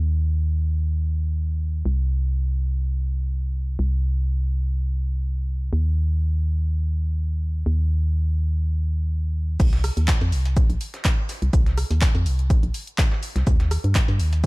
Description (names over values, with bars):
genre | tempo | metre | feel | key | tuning
deep house | 124 BPM | 4/4 | swing 54% on 16ths | unclear | A4 = 440 Hz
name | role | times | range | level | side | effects
organ-like FM bass | bass | 0.0-14.5 s | Bb1 to G2 | -21 LUFS | equal | none
deep house drum kit | drums | 9.6-14.5 s | crash cymbal, handclaps, hi-hat, rim click | -30 LUFS | equal | studio reverb
dusty soul sampler-style drum kit | drums | 9.6-14.5 s | hi-hat, shaker, snare drum | -37 LUFS | right 1 dB | sidechain pumping on perc, high-pass filter on perc, studio reverb, high-pass filter on snare, sidechain pumping on hats, high-pass filter on hats, high-pass filter on room
electronic kick drum | drums | 9.6-14.5 s | none | -20 LUFS | equal | studio reverb
room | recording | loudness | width
digital ambience | dark, warm production | -20 LUFS | side -25 dB against mid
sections
0.0-9.6 A section; 9.6-14.5 B section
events
drop 9.6-14.5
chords
none